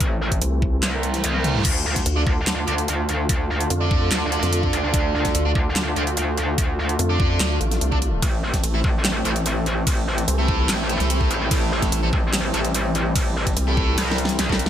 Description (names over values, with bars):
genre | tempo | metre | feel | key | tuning
heavy wobble dubstep | 146 BPM | 4/4 | half-time | D minor | A4 = 444 Hz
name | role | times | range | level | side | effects
supersaw chords | sustained chords | 0.0-14.7 s | D3 to F4 | -28 LUFS | equal | sidechain pumping, low-pass filter
metallic wobble bass | bass | 0.0-14.7 s | A1 to D2 | -23 LUFS | equal | chorus, overdrive
dubstep drum kit | drums | 0.0-14.7 s | crash cymbal, handclaps, hi-hat, ride cymbal, snare drum, toms | -25 LUFS | equal | none
electronic kick drum | drums | 0.0-14.6 s | none | -23 LUFS | equal | none
vowel-sweep wobble bass | bass | 0.4-14.0 s | A1 to F2 | -21 LUFS | equal | chorus, overdrive
reverse cymbal | sound effects | 1.0-1.6 s | none | -29 LUFS | right 6 dB | none
distorted electric guitar | stabs | 2.2-14.5 s | A3 to D5 | -27 LUFS | right 2 dB | distortion, ping-pong delay
room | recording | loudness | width
digital ambience | none | -19 LUFS | side -10 dB against mid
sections
0.0-14.7 A section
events
kick drops out 0.8-1.6; reverse cymbal 1.0-1.6; drum fill 1.3-1.6, 14.0-14.7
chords
0.0 Am; 1.6 Dm; 8.2 Am